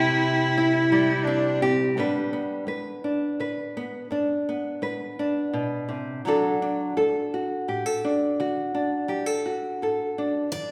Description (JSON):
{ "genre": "acoustic folk duo or small band", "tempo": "84 BPM", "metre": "3/4", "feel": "straight", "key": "G major", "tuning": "A4 = 438 Hz", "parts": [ { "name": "picked steel-string acoustic guitar", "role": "melody", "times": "0.0-1.2, 10.5-10.7 s", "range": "D5 to G5", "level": "-34 LUFS", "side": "equal", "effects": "none" }, { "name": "warm cello", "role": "second line", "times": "0.0-2.0, 10.5-10.7 s", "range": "C4 to E4", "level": "-26 LUFS", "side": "equal", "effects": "none" }, { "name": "nylon-string guitar", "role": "accompaniment", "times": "0.0-10.7 s", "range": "G2 to B4", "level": "-26 LUFS", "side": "equal", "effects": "none" } ], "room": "wet recital hall reverb, RT60 1.5 s", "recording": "recorded in a church or concert hall", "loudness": "-25 LUFS", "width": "mono", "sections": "0.0-2.0 A section; 2.0-10.5 B section", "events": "none", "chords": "0.0 C; 2.0 G; 6.3 D" }